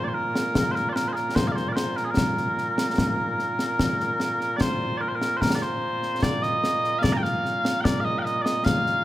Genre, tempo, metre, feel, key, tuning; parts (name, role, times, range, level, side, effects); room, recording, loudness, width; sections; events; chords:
scottish traditional, Scottish pipe music; 74 BPM; 3/4; straight; Bb major; A4 = 440 Hz
mellow small bagpipes; melody; 0.0-9.0 s; Bb2 to Bb5; -24 LUFS; equal
concert snare drum and concert bass drum; drums; 0.4-9.0 s; -26 LUFS; left 1 dB
moderate recital hall reverb, RT60 1.7 s; -22 LUFS; side -14 dB against mid
0.0-4.6 A section; 4.6-9.0 A section